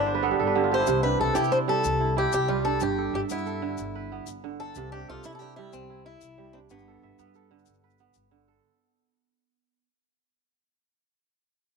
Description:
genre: west african traditional, West African string and xylophone music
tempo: 124 BPM (dotted quarters)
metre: 12/8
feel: straight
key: unclear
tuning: A4 = 439 Hz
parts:
  - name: picked swing-style acoustic guitar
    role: melody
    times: 0.0-8.3 s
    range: B3 to C5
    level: -28 LUFS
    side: left 3 dB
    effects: none
  - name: kora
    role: arpeggios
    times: 0.0-9.9 s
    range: G2 to F5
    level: -28 LUFS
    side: right 10 dB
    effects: none
  - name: upright bass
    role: bass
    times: 0.0-8.6 s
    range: G1 to C3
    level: -33 LUFS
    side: left 3 dB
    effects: none
  - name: tube shaker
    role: percussion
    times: 0.9-8.2 s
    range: none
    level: -40 LUFS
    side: left 19 dB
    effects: none
room: light reverb, small room ambience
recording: 1960s-style stereo with parts hard left and right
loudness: -23 LUFS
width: side -5 dB against mid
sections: 0.0-8.6 A section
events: fade-out 0.0-8.6; kora fill 0.0-0.9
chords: 0.0 G; 0.9 C; 2.8 G; 4.8 C; 6.7 G

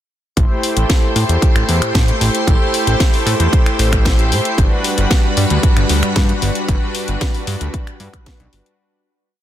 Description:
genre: nu-disco, nu disco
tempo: 114 BPM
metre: 4/4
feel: straight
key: A dorian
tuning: A4 = 440 Hz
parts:
  - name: warm analog pad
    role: accompaniment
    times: 0.4-8.8 s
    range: G3 to C5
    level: -21 LUFS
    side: equal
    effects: chorus, dub echo
  - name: string machine, full ensemble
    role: sustained chords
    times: 0.4-8.8 s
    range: G3 to C6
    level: -22 LUFS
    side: equal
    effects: ensemble chorus, sidechain pumping
  - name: fat analog bass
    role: bass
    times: 0.4-8.6 s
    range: G1 to A2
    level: -17 LUFS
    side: equal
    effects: none
  - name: electronic kick drum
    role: drums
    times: 0.4-8.4 s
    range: none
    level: -15 LUFS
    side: equal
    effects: none
  - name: house drum kit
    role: drums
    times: 0.4-8.8 s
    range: finger snaps, hi-hat, snare drum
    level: -21 LUFS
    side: left 2 dB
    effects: none
room: digital ambience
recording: dense, heavily limited modern master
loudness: -13 LUFS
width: side -12 dB against mid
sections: 0.4-8.8 drop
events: drop 0.4-8.8; fade-out 6.0-8.8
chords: 0.4 Am7; 4.6 Gmaj7

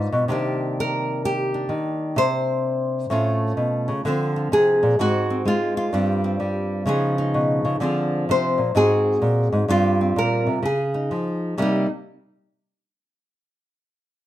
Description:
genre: solo jazz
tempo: 128 BPM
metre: 4/4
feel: swing 65% on 8ths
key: C minor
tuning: A4 = 440 Hz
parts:
  - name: nylon-string guitar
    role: solo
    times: 0.0-11.9 s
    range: G2 to C5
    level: -19 LUFS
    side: equal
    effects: none
room: moderate large studio reverb, RT60 0.8 s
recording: minimal, uncompressed stereo recording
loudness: -19 LUFS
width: side -13 dB against mid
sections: 0.0-4.0 A section; 4.0-11.6 B section; 11.6-13.5 C section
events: none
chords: 0.3 Cm9; 3.1 A; 4.0 Dm7b5; 5.0 Ab7; 5.9 G7sus4; 6.9 Db9; 7.8 Dm7b5; 8.8 Ab7; 9.7 G7sus4; 10.6 Dbadd9; 11.6 C7(no3)

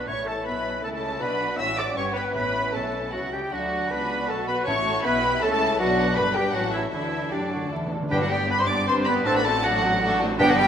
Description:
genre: quick classical-period movement for symphony orchestra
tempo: 157 BPM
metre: 3/4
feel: straight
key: D major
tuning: A4 = 439 Hz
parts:
  - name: rich chamber violin section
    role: melody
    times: 0.0-10.7 s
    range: D5 to E6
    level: -28 LUFS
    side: left 2 dB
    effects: none
  - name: clear oboe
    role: second line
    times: 0.0-10.7 s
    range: D4 to E5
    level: -29 LUFS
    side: right 1 dB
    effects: none
  - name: mellow clarinet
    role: second line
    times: 0.0-10.5 s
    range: D4 to E5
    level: -32 LUFS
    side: left 1 dB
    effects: none
  - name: rich chamber violin section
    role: second line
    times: 0.0-10.7 s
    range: B3 to D5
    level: -32 LUFS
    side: left 2 dB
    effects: none
  - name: mellow bassoon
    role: accompaniment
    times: 0.0-10.5 s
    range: B3 to G4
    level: -32 LUFS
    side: right 3 dB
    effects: none
  - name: rich chamber viola section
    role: accompaniment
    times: 0.0-10.7 s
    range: G3 to E5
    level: -30 LUFS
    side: equal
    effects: none
  - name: rich symphonic double bass section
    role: bass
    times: 0.0-10.7 s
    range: G1 to F#2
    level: -35 LUFS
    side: right 2 dB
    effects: none
  - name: warm chamber cello section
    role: bass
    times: 0.0-10.7 s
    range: G2 to F#3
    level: -34 LUFS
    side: right 2 dB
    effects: none
  - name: dark French horn section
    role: sustained chords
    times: 0.1-10.7 s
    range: D3 to E4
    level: -32 LUFS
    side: left 3 dB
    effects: none
  - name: timpani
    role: percussion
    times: 0.1-10.7 s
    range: G2 to D3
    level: -34 LUFS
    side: left 1 dB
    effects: none
  - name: mellow silver concert flute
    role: second line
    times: 8.1-10.6 s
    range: F#5 to D6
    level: -26 LUFS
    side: right 1 dB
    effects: none
room: moderate concert hall reverb, RT60 1.9 s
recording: minimal, uncompressed stereo recording, vinyl crackle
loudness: -22 LUFS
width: side -8 dB against mid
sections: 0.0-8.1 A section; 8.1-10.7 B section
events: timpani fill 6.9-8.1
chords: 0.1 A; 1.2 Bm; 2.0 G; 2.4 A; 3.5 D; 4.7 A; 5.8 Bm; 6.2 G; 6.6 A; 6.9 D; 8.1 G; 9.3 D7/A

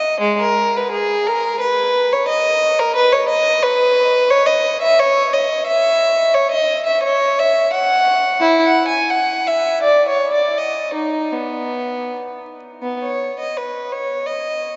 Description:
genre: classical, baroque-style suite movement for unaccompanied violin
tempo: 78-90 BPM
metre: 3/4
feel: rubato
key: B major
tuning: A4 = 440 Hz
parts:
  - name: rich violin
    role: solo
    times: 0.0-14.8 s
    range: G#3 to G#5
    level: -17 LUFS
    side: equal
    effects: none
room: wet cathedral reverb, RT60 6.0 s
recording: in a vast, echoing space, vinyl crackle, nothing above 7.7 kHz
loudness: -17 LUFS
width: mono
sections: 0.0-12.8 A section; 12.8-14.8 A section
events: none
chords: none

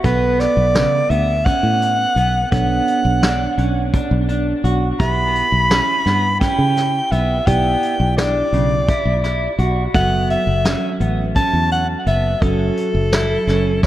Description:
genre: progressive instrumental, band music in an uneven meter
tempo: 170 BPM (eighths)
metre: 7/8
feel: straight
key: B minor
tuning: A4 = 440 Hz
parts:
  - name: breathy soprano saxophone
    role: melody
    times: 0.0-13.9 s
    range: A4 to B5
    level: -19 LUFS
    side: equal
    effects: dub echo
  - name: bell-like tine electric piano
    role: accompaniment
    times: 0.0-13.9 s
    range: F#3 to F#5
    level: -25 LUFS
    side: right 4 dB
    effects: lush chorus
  - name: fingered electric bass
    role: bass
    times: 0.0-13.9 s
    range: F#1 to C#3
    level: -19 LUFS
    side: equal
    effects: none
  - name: vintage brush drum kit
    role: drums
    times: 0.0-13.9 s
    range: hi-hat, kick drum, snare drum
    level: -20 LUFS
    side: equal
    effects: none
  - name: electric guitar at the edge of break-up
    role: arpeggios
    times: 0.1-13.9 s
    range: C#3 to F#4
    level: -24 LUFS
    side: right 2 dB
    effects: spring reverb, dub echo
room: light reverb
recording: echo-heavy mix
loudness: -15 LUFS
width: side -14 dB against mid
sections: 0.0-13.9 A section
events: none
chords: 0.0 Bm9; 5.0 Em7/B; 9.9 F#m7

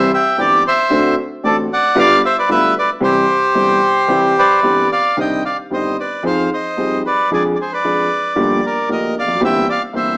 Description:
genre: tango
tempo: 113 BPM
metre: 4/4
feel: rubato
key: C major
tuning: A4 = 440 Hz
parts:
  - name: bandoneon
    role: melody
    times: 0.0-10.2 s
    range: G4 to G5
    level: -14 LUFS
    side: equal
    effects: plate reverb
  - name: warm concert grand piano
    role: accompaniment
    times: 0.0-10.2 s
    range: G1 to Ab4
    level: -18 LUFS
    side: equal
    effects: none
room: moderate large studio reverb, RT60 0.9 s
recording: small speaker sound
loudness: -12 LUFS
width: side -26 dB against mid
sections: 0.0-5.2 A section; 5.2-10.2 B section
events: none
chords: 0.0 C; 0.9 D7; 2.0 G7; 3.0 C; 5.2 Cmadd9; 6.2 Fm7; 7.3 Ddim/F; 8.4 Gm7; 9.4 C7/G

